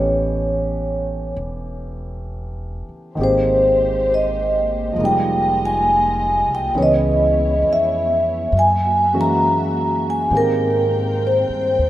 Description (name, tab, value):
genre	jazz ballad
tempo	67 BPM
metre	4/4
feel	swing 68% on 8ths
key	unclear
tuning	A4 = 440 Hz
part	vibraphone with medium mallets	melody	0.0-11.9 s	Bb4 to Bb5	-17 LUFS	equal	none
part	warm grand piano	accompaniment	0.0-11.9 s	Eb3 to Ab4	-24 LUFS	equal	none
part	upright bass	bass	0.0-11.9 s	E1 to Ab2	-25 LUFS	equal	none
part	dark studio string section	sustained chords	3.2-11.9 s	Bb3 to G5	-29 LUFS	equal	none
room	moderate lush hall reverb, RT60 2.9 s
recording	rough home demo mix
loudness	-16 LUFS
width	side -14 dB against mid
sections	0.0-11.9 A section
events	none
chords	0.0 A9; 3.2 Abmaj9; 5.0 Fm11; 6.7 Dbm7; 8.5 Gb9; 10.3 Abmaj9